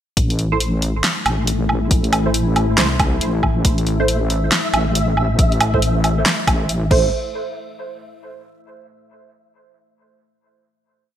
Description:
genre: deep dubstep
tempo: 138 BPM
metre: 4/4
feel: swing 61% on 16ths, half-time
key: A minor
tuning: A4 = 440 Hz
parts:
  - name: deep dark ambient pad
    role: sustained chords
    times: 1.0-6.9 s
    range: A3 to E4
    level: -26 LUFS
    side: left 2 dB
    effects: chorus, built-in reverb
  - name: deep soft wobble bass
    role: bass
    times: 0.2-7.1 s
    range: A1 to C2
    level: -19 LUFS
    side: equal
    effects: chorus
  - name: deep house drum kit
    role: drums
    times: 0.2-7.0 s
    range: crash cymbal, handclaps, hi-hat, snare drum, woodblock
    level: -20 LUFS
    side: right 1 dB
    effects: none
  - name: electronic kick drum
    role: drums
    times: 0.2-7.0 s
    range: none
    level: -19 LUFS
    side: equal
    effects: none
  - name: filtered dub chord stab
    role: stabs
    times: 0.5-7.1 s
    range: A3 to C5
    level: -24 LUFS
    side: right 4 dB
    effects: phaser, ensemble chorus, dub echo
  - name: flickering grainy texture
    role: texture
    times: 4.0-7.1 s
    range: E5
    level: -27 LUFS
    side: left 1 dB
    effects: built-in reverb, ensemble chorus
room: moderate lush hall reverb, RT60 1.7 s, digital ambience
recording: bright 1980s-style digital production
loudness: -15 LUFS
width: side -10 dB against mid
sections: 0.2-7.1 drop; 7.1-8.9 final hit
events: drop 0.2-7.1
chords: 0.2 Am; 7.1 N.C.

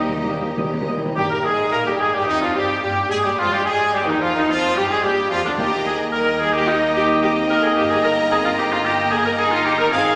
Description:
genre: quick classical-period movement for symphony orchestra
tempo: 109 BPM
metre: 4/4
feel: rubato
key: Eb major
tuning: A4 = 441 Hz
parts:
  - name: rich chamber violin section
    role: melody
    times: 0.0-10.2 s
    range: D4 to Bb5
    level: -32 LUFS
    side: equal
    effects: none
  - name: large flute ensemble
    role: second line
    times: 0.0-10.2 s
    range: D5 to Bb5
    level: -33 LUFS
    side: equal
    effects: none
  - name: mellow clarinet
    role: second line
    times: 0.0-10.2 s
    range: Bb3 to Eb5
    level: -31 LUFS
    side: equal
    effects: none
  - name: rich chamber violin section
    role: second line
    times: 0.0-10.2 s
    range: D4 to Bb5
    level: -33 LUFS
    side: equal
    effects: none
  - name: warm oboe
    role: second line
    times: 0.0-10.2 s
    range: D4 to Eb5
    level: -26 LUFS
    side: equal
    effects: none
  - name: mellow bassoon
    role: accompaniment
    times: 0.0-10.2 s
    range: D3 to Bb3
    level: -34 LUFS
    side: equal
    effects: none
  - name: rich chamber viola section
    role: accompaniment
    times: 0.0-10.2 s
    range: D4 to Bb4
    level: -25 LUFS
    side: equal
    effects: none
  - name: warm French horn section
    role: sustained chords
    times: 0.0-10.1 s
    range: D3 to Eb4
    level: -29 LUFS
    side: equal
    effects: none
  - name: clear trumpet section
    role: stabs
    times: 0.0-10.1 s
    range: D4 to F5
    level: -26 LUFS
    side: equal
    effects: none
  - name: rich symphonic double bass section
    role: bass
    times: 0.0-10.2 s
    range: G1 to Bb2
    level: -35 LUFS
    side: equal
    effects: none
  - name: warm studio cello section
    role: bass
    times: 0.0-10.2 s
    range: G3 to G4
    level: -32 LUFS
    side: equal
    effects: none
  - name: timpani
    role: percussion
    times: 0.0-2.0, 5.6-6.4 s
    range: Eb3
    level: -30 LUFS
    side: equal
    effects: none
room: wet scoring stage reverb, RT60 2.0 s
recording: none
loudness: -19 LUFS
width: mono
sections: 0.0-1.2 A section; 1.2-10.2 A section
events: timpani fill 0.0-1.2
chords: 0.0 Eb; 3.4 Bb7; 5.6 Eb; 7.8 Eb/G

